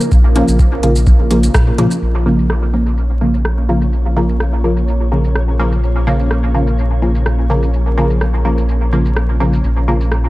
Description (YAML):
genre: dub techno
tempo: 126 BPM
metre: 4/4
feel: swing 53% on 16ths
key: Bb minor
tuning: A4 = 440 Hz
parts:
  - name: deep dark ambient pad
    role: sustained chords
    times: 0.0-10.3 s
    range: Bb3 to Db5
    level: -25 LUFS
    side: right 1 dB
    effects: chorus, built-in reverb, sidechain pumping
  - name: filtered dub chord stab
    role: stabs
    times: 0.0-10.2 s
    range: Db3 to Bb3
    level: -17 LUFS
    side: equal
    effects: chorus, phaser, sidechain pumping, dub echo
  - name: deep house drum kit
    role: drums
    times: 0.0-10.2 s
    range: hi-hat, rim click, shaker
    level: -22 LUFS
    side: equal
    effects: overdrive, low-pass filter on perc, low-pass filter on hats, low-pass filter on snare, dub echo
  - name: flickering grainy texture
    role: texture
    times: 0.0-10.3 s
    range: Db4 to Db5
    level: -32 LUFS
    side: right 1 dB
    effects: built-in reverb, sidechain pumping
  - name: round analog bass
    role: bass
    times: 0.1-10.3 s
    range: Bb1 to Bb2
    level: -15 LUFS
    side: equal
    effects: transformer saturation, sidechain pumping
  - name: electronic kick drum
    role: drums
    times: 0.1-1.6 s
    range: none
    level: -11 LUFS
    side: equal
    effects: none
room: digital ambience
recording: dry, gritty hardware recording, vinyl crackle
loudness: -12 LUFS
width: side -18 dB against mid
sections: 0.0-2.0 A section; 2.0-10.3 B section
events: band accent 1.5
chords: 0.0 Bbm